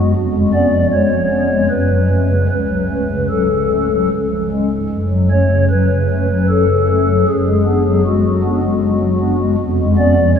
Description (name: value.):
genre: classical, chorale-style piece for pipe organ.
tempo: 76 BPM.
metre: 3/4.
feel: straight.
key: F# minor.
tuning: A4 = 440 Hz.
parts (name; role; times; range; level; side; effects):
pipe organ, stopped flute; solo; 0.0-10.4 s; C#1 to D5; -12 LUFS; left 1 dB; none.
room: wet cathedral reverb, RT60 5.2 s.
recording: small room ambience.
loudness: -13 LUFS.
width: side -7 dB against mid.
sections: 0.0-10.4 A section.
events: none.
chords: 0.2 C#7/E#; 1.7 F#m; 2.5 F#m/C#; 4.1 C#; 4.9 F#m; 7.3 G#m7b5/F#; 9.6 C#7/E#.